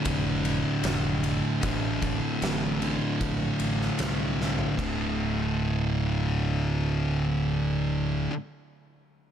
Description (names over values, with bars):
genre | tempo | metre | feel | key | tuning
stoner and doom metal | 76 BPM | 4/4 | straight | unclear | A4 = 436 Hz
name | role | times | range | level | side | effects
thick fuzz guitar | riff | 0.0-8.3 s | D2 to D3 | -28 LUFS | left 4 dB | distortion
thick fuzz guitar | riff | 0.0-8.3 s | D2 to D3 | -30 LUFS | right 9 dB | distortion
growling fingered electric bass | bass | 0.1-8.3 s | D1 to C2 | -32 LUFS | equal | overdrive
oversized low-tuned drum kit | drums | 0.1-5.0 s | crash cymbal, kick drum, ride cymbal, snare drum, toms | -33 LUFS | equal | none
room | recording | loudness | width
studio ambience | none | -25 LUFS | side -9 dB against mid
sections
0.0-4.8 A section; 4.8-8.0 B section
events
drum fill 4.4-4.8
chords
0.0 Dm; 4.8 D5